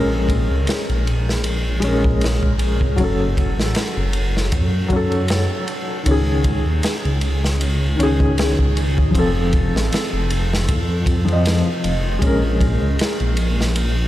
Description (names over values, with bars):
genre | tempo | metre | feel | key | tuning
trip hop | 78 BPM | 4/4 | swing 56% on 16ths | unclear | A4 = 439 Hz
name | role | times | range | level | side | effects
felt-muted upright piano | accompaniment | 0.0-14.1 s | Eb3 to Eb5 | -21 LUFS | left 1 dB | tremolo, vintage 12-bit sampler grit, tape echo
dark detuned saw bass | bass | 0.0-14.1 s | F1 to Gb2 | -20 LUFS | equal | none
crunchy breakbeat drum kit | drums | 0.3-14.0 s | kick drum, ride cymbal, snare drum | -22 LUFS | equal | none
room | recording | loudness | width
light reverb, studio reverb | lossy compression artefacts | -16 LUFS | side -14 dB against mid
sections
0.0-14.1 A section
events
none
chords
0.0 Bbm7; 3.0 Gbm; 6.1 Dbsus2; 9.1 F; 12.2 Bbm7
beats
0.68 1.45 2.22 | 2.99 3.76 4.53 5.30 | 6.07 6.84 7.61 8.37 | 9.14 9.91 10.68 11.45 | 12.22 12.99 13.76